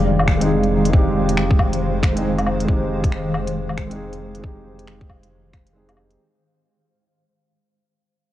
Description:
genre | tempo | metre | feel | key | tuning
future garage | 137 BPM | 4/4 | swing 62% on 16ths | F minor | A4 = 440 Hz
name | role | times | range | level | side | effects
felt-muted upright piano | accompaniment | 0.0-6.2 s | Ab3 to Ab4 | -24 LUFS | right 1 dB | sidechain pumping, low-pass filter, analog delay
granular cloud pad | sustained chords | 0.0-6.2 s | Eb3 to F5 | -22 LUFS | left 1 dB | built-in reverb, sidechain pumping
warm sub bass | bass | 0.0-6.2 s | F1 | -25 LUFS | equal | sidechain pumping
organic electronic drum kit | drums | 0.2-6.2 s | finger snaps, hi-hat, woodblock | -27 LUFS | left 1 dB | studio ambience
electronic kick drum | drums | 0.3-5.6 s | none | -17 LUFS | equal | studio ambience
room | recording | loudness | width
light reverb | cassette tape | -16 LUFS | side -13 dB against mid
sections
0.0-6.2 A section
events
fade-out 0.0-6.2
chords
0.0 Fm7

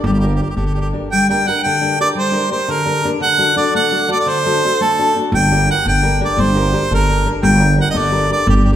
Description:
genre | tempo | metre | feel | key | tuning
italian folk, Italian serenade | 114 BPM (dotted quarters) | 6/8 | straight | G harmonic minor | A4 = 442 Hz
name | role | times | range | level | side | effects
nylon-string guitar | accompaniment | 0.0-8.8 s | D3 to Bb4 | -19 LUFS | left 2 dB | none
upright bass | bass | 0.0-0.9, 5.3-8.8 s | G1 | -16 LUFS | equal | none
clear harmonica | melody | 0.1-8.8 s | G4 to G5 | -16 LUFS | right 1 dB | none
room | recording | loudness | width
wet recital hall reverb, RT60 1.5 s | recorded in a church or concert hall | -13 LUFS | side -11 dB against mid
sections
0.0-1.1 A section; 1.1-8.8 A section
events
none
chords
0.0 Gm; 3.2 D; 5.3 Gm

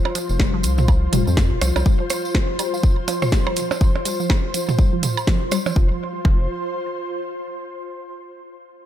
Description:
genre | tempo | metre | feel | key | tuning
minimal techno | 123 BPM | 4/4 | swing 59% on 16ths | unclear | A4 = 443 Hz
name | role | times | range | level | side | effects
ethereal airy pad | texture | 0.0-7.7 s | F4 to C6 | -27 LUFS | left 1 dB | ensemble chorus, built-in reverb, sidechain pumping
minimal click drum kit | percussion | 0.1-5.7 s | percussion blips, rim click, toms | -25 LUFS | right 4 dB | digital delay
tambourine | percussion | 0.1-5.7 s | none | -33 LUFS | right 2 dB | none
resonant blip pluck | riff | 0.2-6.5 s | F3 to G3 | -28 LUFS | left 1 dB | phaser, sidechain pumping, digital delay
house drum kit | drums | 0.2-5.6 s | hi-hat, snare drum | -25 LUFS | equal | none
round analog bass | bass | 0.3-1.8, 5.8-6.5 s | Eb1 to F2 | -20 LUFS | equal | sidechain pumping
electronic kick drum | drums | 0.4-6.4 s | none | -18 LUFS | equal | none
room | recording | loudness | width
little or no reverb | none | -18 LUFS | side -11 dB against mid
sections
0.0-5.8 A section; 5.8-7.7 B section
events
filter sweep on synth pluck 0.0-5.8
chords
0.0 F5

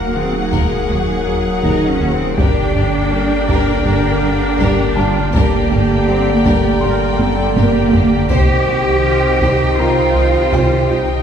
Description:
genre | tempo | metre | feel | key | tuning
cinematic, hybrid orchestral and electronic film score | 81 BPM | 4/4 | straight | unclear | A4 = 440 Hz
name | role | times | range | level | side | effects
rich symphonic violin section | melody | 0.0-11.2 s | Gb5 to G5 | -25 LUFS | left 4 dB | none
clear studio violin section | second line | 0.0-11.2 s | Gb4 to Gb5 | -26 LUFS | left 3 dB | none
rich symphonic viola section | accompaniment | 0.0-11.2 s | Eb4 to Bb4 | -24 LUFS | right 1 dB | none
airy breathy pad | sustained chords | 0.0-11.2 s | D3 to D5 | -24 LUFS | equal | chorus
clear trombone section | sustained chords | 0.0-11.2 s | D3 to C4 | -24 LUFS | right 2 dB | none
mellow French horn section | sustained chords | 0.0-11.2 s | Gb4 to D5 | -23 LUFS | equal | none
rich symphonic cello section | bass | 0.0-11.2 s | Gb3 to G4 | -18 LUFS | right 2 dB | none
saturated sub bass | bass | 0.0-11.2 s | Eb1 to C2 | -23 LUFS | left 1 dB | none
dark baby grand piano | texture | 0.0-11.2 s | G4 to C6 | -26 LUFS | left 1 dB | tape echo
plucky analog bass | riff | 0.2-11.1 s | C2 to G3 | -23 LUFS | right 1 dB | none
clear symphonic double bass section | bass | 0.5-11.0 s | C2 to G2 | -22 LUFS | right 2 dB | none
solo taiko drums | drums | 0.5-11.2 s | none | -21 LUFS | left 1 dB | none
room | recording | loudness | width
wet scoring stage reverb, RT60 1.6 s | heard from further back in the room | -12 LUFS | side -8 dB against mid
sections
0.0-11.2 A section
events
drum fill 7.2-8.3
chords
0.0 Ebm; 2.4 Gm; 8.3 Cm

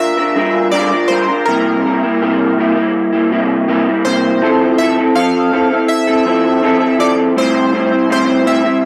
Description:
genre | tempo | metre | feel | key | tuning
indie pop | 81 BPM | 4/4 | straight | unclear | A4 = 439 Hz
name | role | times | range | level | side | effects
chorused retro synth keys | melody | 0.0-8.8 s | Bb4 to F5 | -20 LUFS | equal | analog chorus, analog delay
electric guitar through a small old amp | accompaniment | 0.0-8.9 s | A2 to Bb4 | -15 LUFS | equal | ensemble chorus, warbly pitch drift
room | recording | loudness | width
moderate small room reverb, RT60 0.5 s | dry, gritty hardware recording | -14 LUFS | mono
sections
0.0-8.9 A section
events
none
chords
0.0 Gm7; 1.5 C7; 4.4 Fmaj7; 7.4 Am7

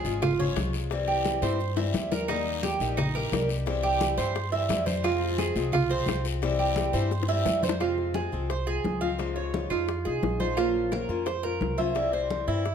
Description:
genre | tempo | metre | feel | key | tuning
latin, Cuban son and guajira | 174 BPM | 4/4 | straight | F minor | A4 = 440 Hz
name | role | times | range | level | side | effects
picked steel-string acoustic guitar | accompaniment | 0.0-12.7 s | C3 to C5 | -31 LUFS | left 8 dB | none
Cuban tres | arpeggios | 0.0-12.7 s | Eb4 to F5 | -29 LUFS | right 7 dB | none
upright bass | bass | 0.0-12.7 s | Ab1 to G2 | -31 LUFS | equal | none
guiro | percussion | 0.0-7.8 s | none | -40 LUFS | left 8 dB | none
bongos | percussion | 0.1-12.7 s | none | -35 LUFS | left 9 dB | none
congas | percussion | 0.1-12.7 s | none | -33 LUFS | left 1 dB | none
room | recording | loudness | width
moderate large studio reverb, RT60 0.8 s | none | -25 LUFS | side -7 dB against mid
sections
0.0-7.8 A section; 7.8-12.7 B section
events
drum fill 1.4-2.3, 7.1-7.8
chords
0.0 Db; 0.9 C; 2.3 Eb; 3.7 C; 5.0 Fm; 6.4 C; 7.8 Fm; 9.2 Dbadd9; 10.6 Bbmadd9; 12.0 C

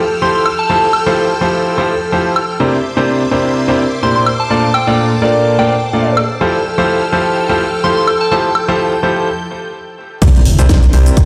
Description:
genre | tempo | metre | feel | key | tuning
piano house | 126 BPM | 4/4 | swing 55% on 16ths | F major | A4 = 440 Hz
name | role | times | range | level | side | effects
string machine, violins | sustained chords | 0.0-10.2 s | A4 to G6 | -23 LUFS | equal | ensemble chorus, sidechain pumping
soft synth bell | melody | 0.2-0.8, 4.0-8.4 s | G5 to C6 | -20 LUFS | equal | chorus, phaser, digital delay
bright baby grand piano | riff | 0.2-11.3 s | Bb2 to D5 | -16 LUFS | equal | sidechain pumping, digital delay
house drum kit | drums | 0.5-11.3 s | crash cymbal, hi-hat, shaker, snare drum, woodblock | -21 LUFS | equal | overdrive
organ-like FM bass | bass | 10.2-11.3 s | G1 to C2 | -13 LUFS | equal | tube saturation, sidechain pumping
electronic kick drum | drums | 10.2-11.3 s | none | -12 LUFS | equal | overdrive
tight metal drum kit | drums | 10.2-11.3 s | hi-hat, snare drum | -36 LUFS | equal | none
impact | sound effects | 10.4-11.3 s | none | -19 LUFS | equal | none
room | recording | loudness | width
wet digital room reverb, RT60 1.1 s | played on a big sound system in a bare room, stone room reverb | -13 LUFS | mono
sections
0.0-10.2 A section; 10.2-11.3 B section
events
break 9.3-10.2; drop 10.2-11.3; impact 10.2-11.3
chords
0.0 Fmaj9; 2.6 C9; 4.3 Bbmaj7; 6.4 Fmaj9; 10.2 C9

